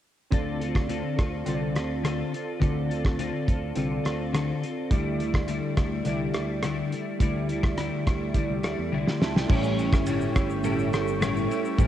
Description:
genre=indie pop, bedroom pop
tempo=105 BPM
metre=4/4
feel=straight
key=D minor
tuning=A4 = 442 Hz
part: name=clean electric guitar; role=accompaniment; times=0.3-11.9 s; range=A2 to A4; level=-29 LUFS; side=left 6 dB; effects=analog chorus, vibrato effect, cassette tape
part: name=warbly lo-fi synth keys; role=accompaniment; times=0.3-11.9 s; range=A3 to C6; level=-32 LUFS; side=right 9 dB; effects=chorus, cassette tape
part: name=fingered electric bass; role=bass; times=0.3-11.9 s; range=G1 to E2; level=-32 LUFS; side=equal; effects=transformer saturation
part: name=cloth-damped thuddy drum kit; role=drums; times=0.3-11.9 s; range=crash cymbal, hi-hat, kick drum, ride cymbal, rim click, shaker, snare drum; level=-26 LUFS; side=equal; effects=cassette tape
part: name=mellow woodwind section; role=sustained chords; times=9.5-11.9 s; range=A4 to C#6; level=-37 LUFS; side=equal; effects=cassette tape
room=light reverb, small room ambience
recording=home recording on cassette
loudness=-24 LUFS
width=side -11 dB against mid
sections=0.3-9.5 A section; 9.5-11.9 B section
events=drum fill 8.9-9.5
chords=0.3 Dm7; 4.9 A7sus4; 9.5 A7

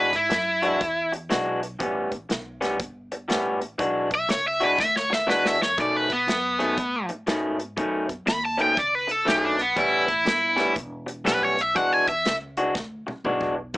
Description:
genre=electric blues shuffle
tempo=120 BPM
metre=4/4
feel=swing 64% on 8ths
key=E mixolydian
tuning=A4 = 440 Hz
part: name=cranked stack guitar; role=melody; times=0.0-1.1, 4.1-12.4 s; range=B3 to B5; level=-22 LUFS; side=equal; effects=overdrive
part: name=electric guitar through a small old amp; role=riff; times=0.0-13.8 s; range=A2 to F#4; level=-25 LUFS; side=left 1 dB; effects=none
part: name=upright bass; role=bass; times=0.0-13.8 s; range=E1 to B2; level=-39 LUFS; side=equal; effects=none
part: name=natural country drum kit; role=drums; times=0.1-13.8 s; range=hi-hat, kick drum, snare drum, toms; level=-29 LUFS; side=equal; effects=none
room=light reverb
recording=small speaker sound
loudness=-21 LUFS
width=side -21 dB against mid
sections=0.0-13.7 A section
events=drum fill 4.8-5.8, 12.8-13.7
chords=0.0 E9; 1.8 A9; 3.8 E9; 5.8 B9; 9.8 A9; 11.8 E9

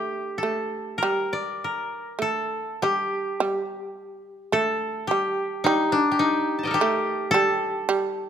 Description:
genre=japanese traditional, Japanese chamber music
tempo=49-55 BPM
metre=2/4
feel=rubato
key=unclear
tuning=A4 = 440 Hz
part: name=koto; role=melody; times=0.0-8.3 s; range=D4 to A5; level=-24 LUFS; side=left 1 dB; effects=none
part: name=shamisen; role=second line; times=0.0-8.3 s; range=G3 to A3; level=-27 LUFS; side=right 3 dB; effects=none
room=light reverb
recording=close, detailed microphones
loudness=-22 LUFS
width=side -8 dB against mid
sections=0.0-1.0 A section; 1.0-8.3 B section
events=none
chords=none

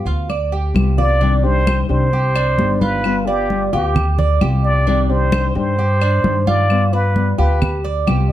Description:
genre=latin, Cuban son and guajira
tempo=131 BPM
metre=4/4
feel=straight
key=C harmonic minor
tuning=A4 = 440 Hz
part: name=nylon-string guitar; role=accompaniment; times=0.0-8.3 s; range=C3 to G4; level=-22 LUFS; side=left 6 dB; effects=none
part: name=Cuban tres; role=arpeggios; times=0.0-8.3 s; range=D4 to D5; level=-23 LUFS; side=right 6 dB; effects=none
part: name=upright bass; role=bass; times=0.1-8.3 s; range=G1 to G2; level=-17 LUFS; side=equal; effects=none
part: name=congas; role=percussion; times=0.1-8.3 s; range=none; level=-21 LUFS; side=equal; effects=none
part: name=claves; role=percussion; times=0.3-8.3 s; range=none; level=-30 LUFS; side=left 4 dB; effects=none
part: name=trumpet with plunger mute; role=melody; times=1.0-8.3 s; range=G4 to D5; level=-20 LUFS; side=equal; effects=none
room=light reverb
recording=dark, warm production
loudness=-14 LUFS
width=side -13 dB against mid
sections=0.0-1.2 A section; 1.2-8.3 B section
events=drum fill 0.7-1.2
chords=0.0 G7; 1.2 Cmadd9; 3.0 G7; 4.9 Cmadd9; 6.7 G7

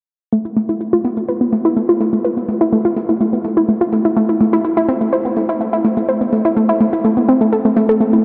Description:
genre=melodic techno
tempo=125 BPM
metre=4/4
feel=straight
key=A minor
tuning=A4 = 439 Hz
part: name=unison pluck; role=arpeggios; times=0.3-8.2 s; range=A3 to C5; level=-15 LUFS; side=equal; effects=delay
part: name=electronic shaker and hi-hat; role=drums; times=0.3-8.2 s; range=none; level=-49 LUFS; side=equal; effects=none
room=wet huge ambient reverb, RT60 8.0 s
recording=dreamy mix soaked in reverb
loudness=-16 LUFS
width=mono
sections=0.3-8.2 A section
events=none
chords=none

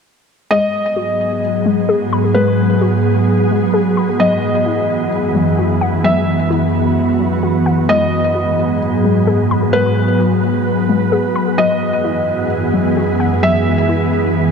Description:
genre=hip hop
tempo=130 BPM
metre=4/4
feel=half-time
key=G# minor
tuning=A4 = 437 Hz
part: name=felt-muted upright piano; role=melody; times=0.5-13.9 s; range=B4 to E5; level=-19 LUFS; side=equal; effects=low-pass filter, ping-pong delay
part: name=ethereal airy pad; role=sustained chords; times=1.0-14.5 s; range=F#2 to B4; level=-15 LUFS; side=right 1 dB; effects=ensemble chorus, built-in reverb
part: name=warbly dusty pluck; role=arpeggios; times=0.5-14.5 s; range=F#3 to B5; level=-21 LUFS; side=left 5 dB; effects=chorus, low-pass filter, ping-pong delay
part: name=wind-like tuned noise texture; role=texture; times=1.2-14.5 s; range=G#3 to B4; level=-25 LUFS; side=right 2 dB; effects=built-in reverb
room=wet huge ambient reverb, RT60 6.8 s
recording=none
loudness=-13 LUFS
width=side -6 dB against mid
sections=0.5-14.5 A section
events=none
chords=0.5 G#m7; 4.2 F#9sus4; 7.9 G#m7; 11.6 F#9sus4

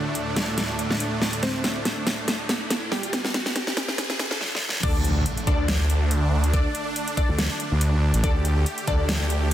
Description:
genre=heavy wobble dubstep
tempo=141 BPM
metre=4/4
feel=swing 54% on 16ths, half-time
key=unclear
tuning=A4 = 441 Hz
part: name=wide unison pluck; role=melody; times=0.0-4.8 s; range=D3 to C5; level=-33 LUFS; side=right 1 dB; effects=tape echo
part: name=supersaw chords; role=sustained chords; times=0.0-9.5 s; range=D2 to G4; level=-30 LUFS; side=right 1 dB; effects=sidechain pumping
part: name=riser and impact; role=sound effects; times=1.2-6.5 s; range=none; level=-34 LUFS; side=equal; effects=none
part: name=dubstep drum kit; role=drums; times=0.2-9.5 s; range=crash cymbal, hi-hat, snare drum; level=-26 LUFS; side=equal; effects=studio reverb
part: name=orchestra-hit-like synth stab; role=stabs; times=4.8-9.0 s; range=D4 to D5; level=-31 LUFS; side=left 3 dB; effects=built-in reverb, phaser, tape echo
part: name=wobble bass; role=bass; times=4.8-8.6 s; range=A1 to D2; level=-21 LUFS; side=equal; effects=chorus, overdrive
part: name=electronic kick drum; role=drums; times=4.8-9.0 s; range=none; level=-23 LUFS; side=equal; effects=overdrive, studio reverb
part: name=snarling distorted saw bass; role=bass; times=5.5-9.5 s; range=D2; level=-22 LUFS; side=equal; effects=distortion, overdrive
room=light reverb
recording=dense, heavily limited modern master, high-pass filter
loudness=-21 LUFS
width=side -12 dB against mid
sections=0.0-4.8 A section; 4.8-9.5 B section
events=build-up 0.0-4.8; drum fill 0.0-4.4, 4.4-4.8; filter sweep 0.0-4.8; riser 1.2-4.4; drop 4.8-9.5; impact 4.8-6.5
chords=0.0 D5

